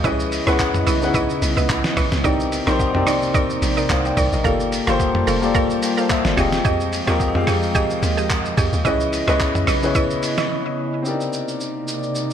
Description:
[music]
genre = amapiano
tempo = 109 BPM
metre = 4/4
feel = swing 55% on 16ths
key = unclear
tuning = A4 = 440 Hz
[part]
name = warm concert grand piano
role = accompaniment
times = 0.0-12.3 s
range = Bb3 to G5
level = -22 LUFS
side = left 4 dB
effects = none
[part]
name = airy breathy pad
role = sustained chords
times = 0.0-12.3 s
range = C3 to A5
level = -26 LUFS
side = right 1 dB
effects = chorus, sidechain pumping
[part]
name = mallet-like synth pluck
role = stabs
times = 0.0-10.5 s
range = Eb4 to F5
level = -25 LUFS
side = right 4 dB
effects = chorus, ping-pong delay
[part]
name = hollow log drum bass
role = bass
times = 0.0-10.2 s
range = F1 to F2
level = -24 LUFS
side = equal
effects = none
[part]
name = lo-fi sampler-style drum kit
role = drums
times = 0.0-12.3 s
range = handclaps, hi-hat, kick drum, rim click, shaker, snare drum, toms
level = -23 LUFS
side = equal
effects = none
[part]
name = agogo bells and woodblock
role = percussion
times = 0.0-10.5 s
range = none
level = -31 LUFS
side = right 3 dB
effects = none
[sound]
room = light reverb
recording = none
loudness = -17 LUFS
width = side -9 dB against mid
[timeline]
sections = 0.0-11.1 A section; 11.1-12.3 B section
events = drop 0.0-11.1; break 10.5-11.1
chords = 0.0 Dbm9; 2.2 Cm9; 4.4 Gm9; 6.4 Fm9; 8.9 Dbm9; 11.1 Cm9

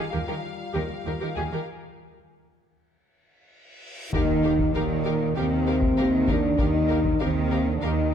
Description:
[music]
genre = cinematic, epic orchestral film score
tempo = 98 BPM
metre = 4/4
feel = straight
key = Eb major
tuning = A4 = 440 Hz
[part]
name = clear symphonic violin section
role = melody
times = 0.0-7.9 s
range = F5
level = -40 LUFS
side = left 5 dB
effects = none
[part]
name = rich symphonic violin section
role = second line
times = 0.0-7.9 s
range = Ab4 to Bb4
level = -36 LUFS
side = left 4 dB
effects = none
[part]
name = warm symphonic viola section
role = accompaniment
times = 0.0-7.9 s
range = G4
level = -36 LUFS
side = right 2 dB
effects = none
[part]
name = dark French horn section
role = sustained chords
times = 0.0-8.1 s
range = G3 to F4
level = -26 LUFS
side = left 3 dB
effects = none
[part]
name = clear studio cello section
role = bass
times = 0.0-8.1 s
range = Eb3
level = -32 LUFS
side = right 4 dB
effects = none
[part]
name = rich symphonic double bass section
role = bass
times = 0.1-8.1 s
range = Eb2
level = -29 LUFS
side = right 4 dB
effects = none
[part]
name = reverse cymbal and impact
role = sound effects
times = 3.7-6.6 s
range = none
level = -36 LUFS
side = left 1 dB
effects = none
[part]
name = mellow trombone section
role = sustained chords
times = 4.1-8.1 s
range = Bb2 to Eb3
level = -33 LUFS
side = right 4 dB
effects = none
[part]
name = mellow tuba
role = bass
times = 4.1-8.1 s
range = Eb2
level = -30 LUFS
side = right 4 dB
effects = none
[part]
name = taiko ensemble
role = drums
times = 4.1-7.6 s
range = none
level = -29 LUFS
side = left 1 dB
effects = none
[part]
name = timpani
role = percussion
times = 4.1-5.0 s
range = Eb3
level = -35 LUFS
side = right 1 dB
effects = none
[sound]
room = moderate concert hall reverb, RT60 1.9 s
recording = dark, warm production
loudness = -22 LUFS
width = side -8 dB against mid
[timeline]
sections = 0.0-4.1 A section; 4.1-8.1 B section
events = build-up 0.0-4.1; break 1.7-4.1; reverse cymbal 3.7-4.1; impact 4.1-6.6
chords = 0.0 Ebadd9; 1.7 N.C.; 4.1 Ebadd9

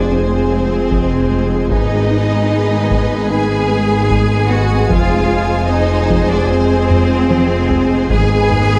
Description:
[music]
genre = cinematic, hybrid orchestral and electronic film score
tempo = 75 BPM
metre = 4/4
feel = straight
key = unclear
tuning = A4 = 439 Hz
[part]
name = warm symphonic violin section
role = melody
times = 0.0-8.8 s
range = C5 to G#5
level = -27 LUFS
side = equal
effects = none
[part]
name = rich studio violin section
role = second line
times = 0.0-8.8 s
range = B4 to G#5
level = -26 LUFS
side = equal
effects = none
[part]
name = rich symphonic viola section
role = accompaniment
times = 0.0-8.8 s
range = G#3 to G#4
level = -25 LUFS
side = equal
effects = none
[part]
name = bright trombone section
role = sustained chords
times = 0.0-8.8 s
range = D#3 to G#3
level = -26 LUFS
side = equal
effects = none
[part]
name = dark analog pad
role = sustained chords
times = 0.2-8.8 s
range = G#3 to C5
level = -28 LUFS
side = equal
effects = none
[part]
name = mellow French horn section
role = sustained chords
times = 0.0-8.8 s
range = B3 to G#4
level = -25 LUFS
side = equal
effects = none
[part]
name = clear symphonic cello section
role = bass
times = 0.0-8.8 s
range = C4 to G#4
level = -22 LUFS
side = equal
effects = none
[part]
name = phased detuned saw bass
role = bass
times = 0.0-8.8 s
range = F1 to G#1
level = -25 LUFS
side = equal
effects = phaser
[part]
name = rich symphonic double bass section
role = bass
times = 0.0-8.8 s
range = F1 to G#1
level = -20 LUFS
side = equal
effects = none
[part]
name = woody wave-folded pluck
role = arpeggios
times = 0.1-8.7 s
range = F3 to G#4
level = -28 LUFS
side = equal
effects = none
[part]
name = solo taiko drums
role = drums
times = 0.9-8.8 s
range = none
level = -23 LUFS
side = equal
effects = none
[sound]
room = moderate scoring stage reverb, RT60 2.0 s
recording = dark, warm production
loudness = -14 LUFS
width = mono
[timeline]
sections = 0.0-8.8 A section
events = drum fill 6.9-8.1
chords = 0.0 Fm; 1.7 G#m; 4.9 Fm; 8.1 G#m

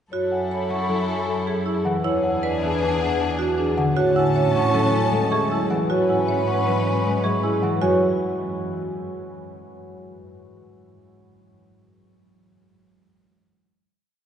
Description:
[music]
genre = classical, minimalist pattern music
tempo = 156 BPM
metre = 5/4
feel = straight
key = F# minor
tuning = A4 = 440 Hz
[part]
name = vibraphone with soft mallets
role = melody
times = 0.1-8.0 s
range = G#4 to G#5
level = -26 LUFS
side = left 4 dB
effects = none
[part]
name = warm symphonic string section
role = sustained chords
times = 0.1-7.6 s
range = C#4 to A5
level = -28 LUFS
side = left 2 dB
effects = none
[part]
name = marimba with hard mallets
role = arpeggios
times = 0.1-8.0 s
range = C#4 to C#5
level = -26 LUFS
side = right 5 dB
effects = none
[part]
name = clear double bass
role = bass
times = 0.1-8.0 s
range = E2 to A2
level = -29 LUFS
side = right 2 dB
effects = none
[part]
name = celesta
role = arpeggios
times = 0.3-8.0 s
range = F#5 to C#6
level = -32 LUFS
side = right 1 dB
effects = none
[part]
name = concert harp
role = accompaniment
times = 0.7-9.8 s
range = D3 to C#4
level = -26 LUFS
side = left 1 dB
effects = none
[sound]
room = wet cathedral reverb, RT60 5.3 s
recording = recorded in a church or concert hall, nothing above 10.9 kHz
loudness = -19 LUFS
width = side -8 dB against mid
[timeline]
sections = 0.1-7.8 A section; 7.8-9.7 final chord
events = none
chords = 0.1 F#m7; 2.0 E9; 4.0 Amaj7; 5.9 C#m7/G#; 7.8 F#5

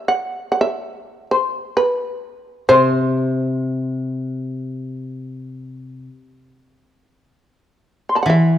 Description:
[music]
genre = japanese traditional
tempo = free time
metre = none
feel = none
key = unclear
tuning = A4 = 440 Hz
[part]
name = shamisen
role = melody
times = 0.0-8.6 s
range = B4 to C6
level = -17 LUFS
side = equal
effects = none
[part]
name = koto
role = accompaniment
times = 2.7-8.6 s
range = C3 to E3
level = -19 LUFS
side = left 1 dB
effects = none
[sound]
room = moderate recital hall reverb, RT60 1.8 s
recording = dark, warm production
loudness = -17 LUFS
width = side -11 dB against mid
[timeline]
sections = 0.0-8.6 A section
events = none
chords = none

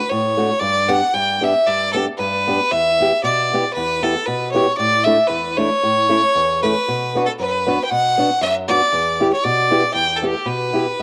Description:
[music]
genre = alpine folk, alpine dance band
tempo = 116 BPM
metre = 2/4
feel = swing 54% on 8ths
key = unclear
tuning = A4 = 440 Hz
[part]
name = bright fiddle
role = melody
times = 0.0-11.0 s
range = G4 to G5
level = -19 LUFS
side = equal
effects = none
[part]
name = fingerpicked old ladder-braced acoustic guitar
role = accompaniment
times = 0.1-11.0 s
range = E2 to G4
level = -23 LUFS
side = equal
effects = cassette tape
[sound]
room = moderate spring reverb, RT60 2.0 s, small room ambience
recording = home recording on cassette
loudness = -18 LUFS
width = mono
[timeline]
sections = 0.0-11.0 A section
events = none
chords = 0.0 D; 0.6 G; 2.7 Em; 4.8 Asus4; 5.8 A; 6.9 Bm; 8.9 Em7

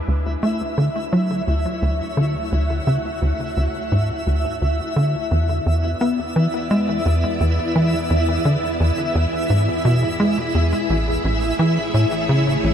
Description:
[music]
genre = ambient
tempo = 86 BPM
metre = 4/4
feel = straight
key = D lydian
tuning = A4 = 440 Hz
[part]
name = string machine, full ensemble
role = sustained chords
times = 0.0-12.7 s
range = A3 to F#5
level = -27 LUFS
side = equal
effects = ensemble chorus
[part]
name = analog drone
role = bass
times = 1.0-12.7 s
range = A1 to E2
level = -35 LUFS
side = equal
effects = chorus
[part]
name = twinkling granular texture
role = texture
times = 0.3-12.7 s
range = E4 to E5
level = -25 LUFS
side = equal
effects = built-in reverb
[part]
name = tight sequencer bass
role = riff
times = 0.1-12.7 s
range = A1 to B3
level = -19 LUFS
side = equal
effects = wide subtle chorus, ping-pong delay
[sound]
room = moderate huge ambient reverb, RT60 8.8 s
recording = none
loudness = -18 LUFS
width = side -9 dB against mid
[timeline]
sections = 0.0-12.7 A section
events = fade-in on string machine 0.0-12.7; fade-in on synth drone 0.0-12.7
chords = 0.0 Dmaj7; 5.3 E7; 10.9 Amaj7

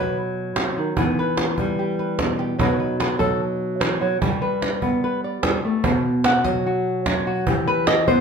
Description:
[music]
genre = flamenco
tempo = 148 BPM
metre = 4/4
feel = straight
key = unclear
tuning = A4 = 441 Hz
[part]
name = flamenco guitar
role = melody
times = 0.0-8.2 s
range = B2 to F#5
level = -20 LUFS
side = equal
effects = none
[part]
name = cajon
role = percussion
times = 0.6-8.2 s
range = none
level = -24 LUFS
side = right 1 dB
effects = none
[sound]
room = moderate studio reverb, RT60 0.6 s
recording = band playing live in one room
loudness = -19 LUFS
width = side -6 dB against mid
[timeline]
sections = 0.0-8.2 A section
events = nylon-string guitar solo 0.0-8.2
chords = 0.0 B; 1.0 Em; 2.6 B; 4.2 G; 5.8 B5; 7.5 Em

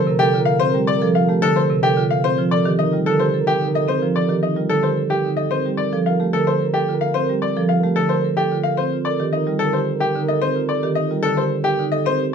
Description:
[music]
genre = classical, minimalist pattern music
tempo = 110 BPM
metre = 3/4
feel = straight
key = unclear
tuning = A4 = 440 Hz
[part]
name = bright baby grand piano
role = melody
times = 0.0-12.2 s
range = G4 to F5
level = -21 LUFS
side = left 6 dB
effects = none
[part]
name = mellow French horn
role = second line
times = 0.0-12.3 s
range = Bb4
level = -27 LUFS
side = right 3 dB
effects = none
[part]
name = marimba with medium hard mallets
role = arpeggios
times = 0.0-12.3 s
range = C4 to Bb4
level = -23 LUFS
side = right 10 dB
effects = none
[part]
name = marimba with medium hard mallets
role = accompaniment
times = 0.1-12.0 s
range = C3 to A3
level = -21 LUFS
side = right 1 dB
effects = none
[sound]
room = light reverb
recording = minimal, uncompressed stereo recording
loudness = -17 LUFS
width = side -6 dB against mid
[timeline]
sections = 0.0-12.3 A section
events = none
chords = 0.0 Gm9; 2.2 Cm11; 5.5 Gm9; 8.8 Cm11

